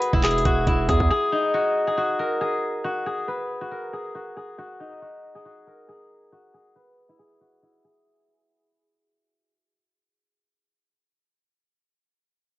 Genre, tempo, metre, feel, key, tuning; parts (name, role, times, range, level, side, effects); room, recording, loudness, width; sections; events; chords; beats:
hip hop, trap; 138 BPM; 4/4; half-time; A4 = 440 Hz
steel-string zither; melody; 0.0-10.2 s; D#4 to B4; -24 LUFS; left 1 dB; low-pass filter
trap drum kit; drums; 0.0-1.1 s; handclaps, hi-hat, kick drum; -23 LUFS; right 1 dB; cassette tape
distorted 808-style bass; bass; 0.1-1.1 s; E1 to E2; -23 LUFS; right 1 dB; distortion
light reverb; home recording on cassette, nothing above 7.8 kHz; -21 LUFS; side -16 dB against mid
0.0-8.1 A section
fade-out 0.0-8.1; filter sweep on guzheng 0.0-8.1
0.0 Eadd9; 1.1 N.C.
0.23 0.67 | 1.10 1.54 1.97 2.41 | 2.84 3.28 3.71 4.15 | 4.58 5.02 5.45 5.89 | 6.32 6.76 7.19 7.63